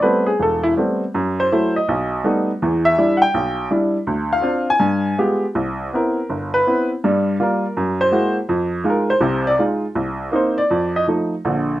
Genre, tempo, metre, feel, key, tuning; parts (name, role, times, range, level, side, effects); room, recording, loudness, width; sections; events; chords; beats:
solo jazz; 163 BPM; 4/4; swing 64% on 8ths, rubato; A4 = 441 Hz
clear upright piano; solo; 0.0-11.8 s; E1 to Ab5; -16 LUFS; equal
moderate studio reverb, RT60 0.6 s; rough home demo mix; -16 LUFS; side -15 dB against mid
0.0-5.6 A section; 5.6-11.8 A section
upright piano solo 0.0-5.6, 5.6-11.8
0.0 Am9; 1.1 F#m7b5; 1.9 B7b13; 2.6 Em7; 4.1 Dm7; 4.8 G7b9; 5.6 Cmaj7; 7.0 Gm7; 7.8 F#9; 8.5 Fm7; 10.0 Cm7; 10.7 F7
0.03 0.41 0.78 | 1.15 1.52 1.89 2.25 | 2.62 2.98 3.35 3.71 | 4.08 4.45 4.82 5.19 | 5.56 5.93 6.30 6.67 | 7.04 7.40 7.77 8.13 | 8.50 8.86 9.23 9.60 | 9.97 10.34 10.71 11.08 | 11.45